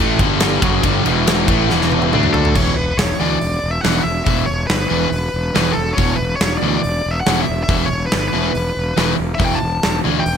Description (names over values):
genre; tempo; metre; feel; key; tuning
hard rock; 140 BPM; 4/4; straight; E dorian; A4 = 442 Hz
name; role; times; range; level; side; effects
airy breathy pad; sustained chords; 0.0-2.5 s; E3 to F#5; -31 LUFS; left 2 dB; none
crunchy overdriven guitar; riff; 0.0-10.2 s; E2 to D4; -22 LUFS; right 12 dB; none
distorted electric guitar; riff; 0.0-10.2 s; E2 to D4; -21 LUFS; left 18 dB; overdrive
high-gain distorted guitar; riff; 0.0-2.5 s; E2 to D4; -23 LUFS; equal; distortion
fuzz fingered electric bass; bass; 0.0-10.4 s; E1 to D2; -21 LUFS; equal; overdrive
huge arena drum kit; drums; 0.2-10.4 s; crash cymbal, hi-hat, kick drum, ride cymbal, snare drum, toms; -20 LUFS; equal; none
bluesy overdriven lead guitar; melody; 2.3-10.4 s; A4 to A5; -22 LUFS; left 1 dB; distortion
room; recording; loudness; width
little or no reverb; none; -14 LUFS; side -7 dB against mid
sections
0.0-2.6 A section; 2.6-10.4 B section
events
drum fill 1.7-2.6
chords
0.2 G5; 0.6 Em; 2.1 D5; 2.6 E5